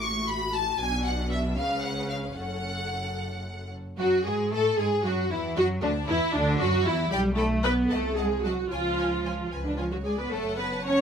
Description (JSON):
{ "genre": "quick classical-period movement for string orchestra", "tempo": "75 BPM (dotted quarters)", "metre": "6/8", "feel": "rubato", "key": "F# minor", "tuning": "A4 = 440 Hz", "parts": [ { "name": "clear studio violin section", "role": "melody", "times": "0.0-11.0 s", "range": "D4 to C#6", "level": "-33 LUFS", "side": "left 2 dB", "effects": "none" }, { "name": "rich studio violin section", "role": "second line", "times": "0.0-11.0 s", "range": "D4 to C#6", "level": "-37 LUFS", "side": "left 2 dB", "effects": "none" }, { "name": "rich studio viola section", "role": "accompaniment", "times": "0.0-11.0 s", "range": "A3 to C#5", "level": "-28 LUFS", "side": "equal", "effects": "none" }, { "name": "rich studio cello section", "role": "bass", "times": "0.0-11.0 s", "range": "F#2 to C#4", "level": "-31 LUFS", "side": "right 1 dB", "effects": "none" }, { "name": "rich studio double bass section", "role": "bass", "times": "0.0-11.0 s", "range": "F#1 to A2", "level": "-32 LUFS", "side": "equal", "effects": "none" } ], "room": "moderate large studio reverb, RT60 1.1 s", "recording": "minimal, uncompressed stereo recording", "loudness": "-24 LUFS", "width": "side -7 dB against mid", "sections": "0.0-4.0 A section; 4.0-11.0 B section", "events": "none", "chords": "0.0 F#m/A; 0.8 Bm; 1.6 C#7; 2.4 F#m; 5.6 D; 7.1 G/B; 7.9 Cdim7; 8.7 C#; 10.3 F#m" }